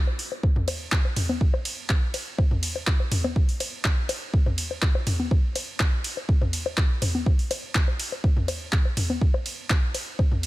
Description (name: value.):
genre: house.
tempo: 123 BPM.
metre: 4/4.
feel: straight.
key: none.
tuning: none.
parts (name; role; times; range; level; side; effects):
electronic bongos, toms and congas; percussion; 0.1-10.4 s; none; -29 LUFS; left 2 dB; sidechain pumping on perc, sidechain pumping on toms.
deep house drum kit; drums; 0.2-10.5 s; handclaps, hi-hat, ride cymbal; -30 LUFS; right 1 dB; sidechain pumping on hats, sidechain pumping on cymbals.
electronic kick drum; drums; 0.4-10.3 s; none; -22 LUFS; equal; none.
room: little or no reverb.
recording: none.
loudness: -22 LUFS.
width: side -17 dB against mid.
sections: 0.0-10.5 A section.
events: none.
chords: none.